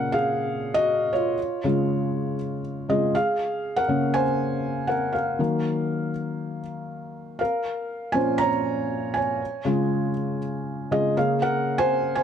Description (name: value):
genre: pop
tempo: 120 BPM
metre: 4/4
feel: straight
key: Bb minor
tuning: A4 = 440 Hz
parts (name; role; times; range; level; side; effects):
- felt-muted upright piano; solo; 0.0-12.2 s; Bb2 to Bb5; -22 LUFS; equal; none
room: light reverb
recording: dark, warm production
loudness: -22 LUFS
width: side -8 dB against mid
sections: 0.0-12.2 A section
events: felt piano solo 0.0-12.2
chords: 0.0 Bbm; 1.4 Db; 3.1 Gbmaj9#11; 5.4 Ebmadd9; 7.4 Bbm; 9.4 Db; 11.2 Gbmaj9#11/Db